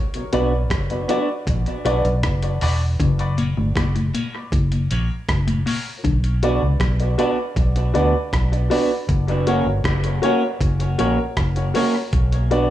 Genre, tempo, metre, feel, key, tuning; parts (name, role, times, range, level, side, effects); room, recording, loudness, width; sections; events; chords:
dub reggae; 79 BPM; 4/4; straight; B harmonic minor; A4 = 440 Hz
mellow tonewheel organ; accompaniment; 0.1-6.0 s; F#2 to D4; -32 LUFS; right 1 dB; slow rotary speaker, high-pass filter, dub echo
dusty soul sampler-style drum kit; drums; 0.1-12.7 s; hi-hat, kick drum, rim click; -24 LUFS; equal
semi-hollow electric guitar; accompaniment; 0.3-12.7 s; A#3 to F#4; -24 LUFS; right 4 dB; analog chorus, high-pass filter, dub echo
clear upright piano; stabs; 0.3-12.7 s; F#4 to D5; -25 LUFS; left 3 dB; high-pass filter, dub echo
vintage muted fingered electric bass; bass; 0.3-12.7 s; E1 to D2; -20 LUFS; equal
mellow electric guitar; arpeggios; 3.0-6.2 s; A2 to D3; -26 LUFS; left 5 dB; dub echo
light reverb, digital ambience; echo-heavy mix, studio ambience; -18 LUFS; side -13 dB against mid
0.0-3.0 A section; 3.0-12.7 B section
break 0.0-3.0; filter sweep 0.0-6.0
0.0 Bm; 3.0 F#; 6.0 Bm; 9.1 F#; 12.1 Bm